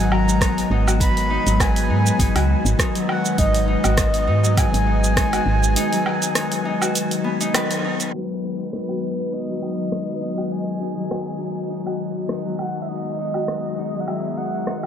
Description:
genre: organic downtempo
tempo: 101 BPM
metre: 4/4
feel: swing 54% on 16ths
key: G# minor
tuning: A4 = 440 Hz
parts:
  - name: breathy flute-like synth lead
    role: melody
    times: 0.0-14.9 s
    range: B4 to B5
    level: -26 LUFS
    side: equal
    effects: wide subtle chorus, ping-pong delay
  - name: warbly tape-like pad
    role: sustained chords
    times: 0.0-14.9 s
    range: D#3 to B4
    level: -26 LUFS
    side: left 2 dB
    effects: chorus, built-in reverb, sidechain pumping
  - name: Celtic harp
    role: arpeggios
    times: 0.0-14.9 s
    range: F#3 to B4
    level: -26 LUFS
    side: left 3 dB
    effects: low-pass filter, ping-pong delay
  - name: woody FM bass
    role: bass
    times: 0.0-5.8 s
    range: G#1 to G#2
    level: -20 LUFS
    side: equal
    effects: tube saturation, sidechain pumping
  - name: deep house drum kit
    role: drums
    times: 0.1-14.9 s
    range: hi-hat, rim click, shaker, woodblock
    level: -26 LUFS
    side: right 1 dB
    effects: low-pass filter on hats, low-pass filter on perc, low-pass filter on snare, low-pass filter on room
  - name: electronic kick drum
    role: drums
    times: 0.4-5.3 s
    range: none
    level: -21 LUFS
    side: right 1 dB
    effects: none
room: moderate huge ambient reverb, RT60 8.4 s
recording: dreamy mix soaked in reverb, low-pass filter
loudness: -18 LUFS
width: side -9 dB against mid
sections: 0.0-8.1 A section; 8.1-14.9 B section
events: break 5.8-8.1; band accent 7.5; filter sweep on drum 8.1-14.9; filter sweep on harp 8.1-14.9; filter sweep 8.1-14.9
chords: 0.0 G#m7

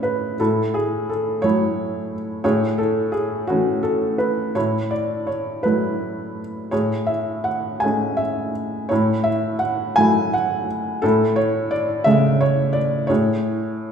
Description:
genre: classical, lyrical solo piano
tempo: 54-60 BPM (dotted quarters)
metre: 6/8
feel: rubato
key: A major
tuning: A4 = 440 Hz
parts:
  - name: felt-muted upright piano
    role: solo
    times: 0.0-13.9 s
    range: A2 to G#5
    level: -18 LUFS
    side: equal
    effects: none
room: wet recital hall reverb, RT60 1.5 s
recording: recorded in a church or concert hall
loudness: -18 LUFS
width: side -7 dB against mid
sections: 0.0-13.9 A section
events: none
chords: 0.4 F#m7/A; 2.4 Amaj7; 4.6 F#m7/A; 6.7 Amaj7

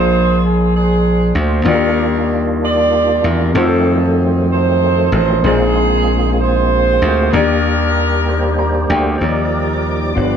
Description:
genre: gospel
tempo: 64 BPM (dotted quarters)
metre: 6/8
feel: straight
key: Eb major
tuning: A4 = 444 Hz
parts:
  - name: mellow horn section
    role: melody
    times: 0.0-8.9 s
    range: C4 to D5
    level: -17 LUFS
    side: right 3 dB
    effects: none
  - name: warm baby grand piano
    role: accompaniment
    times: 0.0-10.4 s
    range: G2 to Bb5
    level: -20 LUFS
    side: left 5 dB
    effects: none
  - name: slap bass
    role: bass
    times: 0.0-10.4 s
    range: G1 to F2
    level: -16 LUFS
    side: equal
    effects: none
  - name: percussive tonewheel organ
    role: sustained chords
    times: 1.7-10.4 s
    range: Eb3 to D5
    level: -20 LUFS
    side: right 2 dB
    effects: slow rotary speaker, overdrive, chorus vibrato
  - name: muted studio string section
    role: sustained chords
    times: 9.2-10.4 s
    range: Eb4 to D6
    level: -28 LUFS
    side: left 1 dB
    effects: none
room: moderate studio reverb, RT60 0.7 s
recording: band playing live in one room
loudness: -12 LUFS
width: side -8 dB against mid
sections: 0.0-9.2 A section; 9.2-10.4 B section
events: grand piano fill 8.3-9.2; tonewheel organ solo 9.2-10.4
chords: 0.0 Bb9; 1.7 Ebmaj9; 3.6 F7b9; 5.4 Bb9sus4; 7.3 Ebmaj7

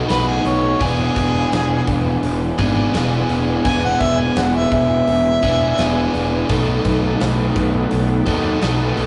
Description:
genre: blues rock power trio and southern rock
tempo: 84 BPM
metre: 4/4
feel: straight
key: unclear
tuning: A4 = 441 Hz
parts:
  - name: biting overdriven guitar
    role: riff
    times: 0.0-9.1 s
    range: B2 to A4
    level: -21 LUFS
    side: equal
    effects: none
  - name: warm harmonica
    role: melody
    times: 0.1-6.1 s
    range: G#4 to G#5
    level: -22 LUFS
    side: equal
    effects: overdrive
  - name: fuzz picked electric bass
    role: bass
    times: 0.1-9.1 s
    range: E1 to D#2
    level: -23 LUFS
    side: equal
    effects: overdrive
  - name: big rock drum kit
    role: drums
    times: 0.1-9.1 s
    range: hi-hat, kick drum, snare drum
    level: -28 LUFS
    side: equal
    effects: none
  - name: overdriven tonewheel organ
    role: sustained chords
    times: 6.5-9.1 s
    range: D#4 to D5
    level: -33 LUFS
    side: equal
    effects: none
room: moderate small room reverb, RT60 0.5 s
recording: rough rehearsal-room recording, nothing above 11.0 kHz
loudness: -18 LUFS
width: mono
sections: 0.0-9.1 A section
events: harmonica solo 0.0-9.1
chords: 0.0 B7; 0.8 E7; 6.5 B7#9

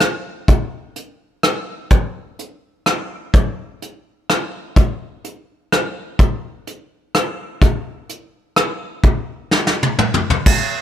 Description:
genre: country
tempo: 126 BPM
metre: 3/4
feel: swing 63% on 8ths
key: none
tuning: none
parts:
  - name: soft brush drum kit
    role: drums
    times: 0.0-10.6 s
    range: crash cymbal, hi-hat, kick drum, rim click, snare drum, toms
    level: -15 LUFS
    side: equal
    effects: none
room: little or no reverb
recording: none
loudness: -16 LUFS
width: side -10 dB against mid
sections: 0.0-10.5 A section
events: drum fill 9.5-10.5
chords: none

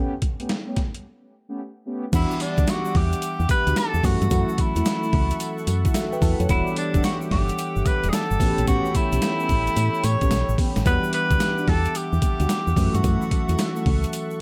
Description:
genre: R&B, new jack swing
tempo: 110 BPM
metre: 4/4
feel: swing 65% on 16ths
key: E dorian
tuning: A4 = 440 Hz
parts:
  - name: mellow synth brass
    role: stabs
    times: 0.0-13.9 s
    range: G3 to G4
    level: -34 LUFS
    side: equal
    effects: chorus
  - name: boom bap sampler-style drum kit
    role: drums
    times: 0.2-14.3 s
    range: crash cymbal, hi-hat, kick drum, snare drum, tambourine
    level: -26 LUFS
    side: equal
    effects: overdrive, gated reverb
  - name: warm tenor saxophone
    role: melody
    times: 2.1-14.0 s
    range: D4 to C#5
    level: -28 LUFS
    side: equal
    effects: none
  - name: tine electric piano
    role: accompaniment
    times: 2.1-14.4 s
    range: E3 to A5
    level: -31 LUFS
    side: equal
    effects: none
  - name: warm analog pad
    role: sustained chords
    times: 2.1-14.4 s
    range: G4 to D6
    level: -36 LUFS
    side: equal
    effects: chorus
  - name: solid FM bass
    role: bass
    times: 2.1-14.1 s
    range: E1 to A2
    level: -25 LUFS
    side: equal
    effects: none
  - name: egg shaker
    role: percussion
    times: 2.1-14.4 s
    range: none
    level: -46 LUFS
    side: equal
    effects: none
room: little or no reverb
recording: none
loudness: -22 LUFS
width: mono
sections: 0.0-2.1 A section; 2.1-14.4 B section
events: break 1.0-2.1; tine electric piano fill 5.7-6.5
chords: 0.0 A9; 2.1 Em9; 4.0 F#m7; 6.5 Em9; 8.4 A9; 10.9 Em9; 12.8 F#m7

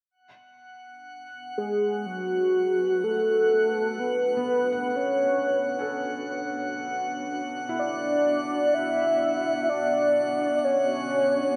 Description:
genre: ambient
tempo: 63 BPM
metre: 4/4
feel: straight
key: B dorian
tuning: A4 = 440 Hz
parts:
  - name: ethereal airy pad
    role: sustained chords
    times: 1.4-11.6 s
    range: B3 to G#5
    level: -38 LUFS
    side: equal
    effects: ensemble chorus, built-in reverb
  - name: drifting glass-harmonics texture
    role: texture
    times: 0.7-11.6 s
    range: F#5 to F#6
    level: -36 LUFS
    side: equal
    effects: chorus, built-in reverb
  - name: warm velvety synth lead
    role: melody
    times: 1.6-11.6 s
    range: F#4 to E5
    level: -26 LUFS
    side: equal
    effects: chorus, tremolo, tape echo
  - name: felt-muted upright piano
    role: arpeggios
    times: 4.4-11.6 s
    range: B3 to F#5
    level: -41 LUFS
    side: equal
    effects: tape echo
room: wet cathedral reverb, RT60 6.7 s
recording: none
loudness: -25 LUFS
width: mono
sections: 0.1-11.6 A section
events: fade-in on ambient pad 0.1-11.6; fade-in on felt piano 0.1-11.6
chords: 0.1 Bmadd9

